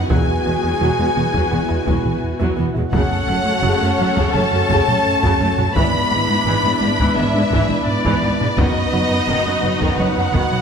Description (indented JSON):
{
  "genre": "cinematic, hybrid orchestral and electronic film score",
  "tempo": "85 BPM",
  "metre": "4/4",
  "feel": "straight",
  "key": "F# minor",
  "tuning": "A4 = 440 Hz",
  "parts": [
    { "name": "warm symphonic violin section", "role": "melody", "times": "0.0-10.6 s", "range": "D5 to B5", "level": "-21 LUFS", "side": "left 2 dB", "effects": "none" },
    { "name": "warm symphonic violin section", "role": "second line", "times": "0.0-10.6 s", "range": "E4 to G#5", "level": "-24 LUFS", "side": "left 1 dB", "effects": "none" },
    { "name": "warm symphonic viola section", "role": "accompaniment", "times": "0.0-10.6 s", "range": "C#3 to F#4", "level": "-24 LUFS", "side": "equal", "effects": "none" },
    { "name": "chorused pulse-width pad", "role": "sustained chords", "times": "0.0-10.6 s", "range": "F#3 to D5", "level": "-25 LUFS", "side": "equal", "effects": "none" },
    { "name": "mellow French horn section", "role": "sustained chords", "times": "0.0-10.2 s", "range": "E3 to G#4", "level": "-30 LUFS", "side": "left 7 dB", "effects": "none" },
    { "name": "wide unison pluck", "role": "arpeggios", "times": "0.0-10.4 s", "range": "E3 to B4", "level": "-28 LUFS", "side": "equal", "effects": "none" },
    { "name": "round analog bass", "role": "riff", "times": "0.0-10.6 s", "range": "E2 to G#3", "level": "-24 LUFS", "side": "right 2 dB", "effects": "none" },
    { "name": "clear symphonic cello section", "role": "bass", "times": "0.1-10.4 s", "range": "E2 to G#2", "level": "-26 LUFS", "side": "right 1 dB", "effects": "none" },
    { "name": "warm symphonic double bass section", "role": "bass", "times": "0.1-10.4 s", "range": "E1 to G#1", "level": "-26 LUFS", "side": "right 3 dB", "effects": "none" },
    { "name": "taiko ensemble", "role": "drums", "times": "0.1-10.6 s", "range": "none", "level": "-23 LUFS", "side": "left 1 dB", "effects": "none" }
  ],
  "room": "wet scoring stage reverb, RT60 1.6 s",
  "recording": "none",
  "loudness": "-15 LUFS",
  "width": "side -6 dB against mid",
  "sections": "0.0-2.9 A section; 2.9-10.6 A section",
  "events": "none",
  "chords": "0.1 Eadd9; 2.9 F#m; 5.8 E7/G#; 8.6 B/F#"
}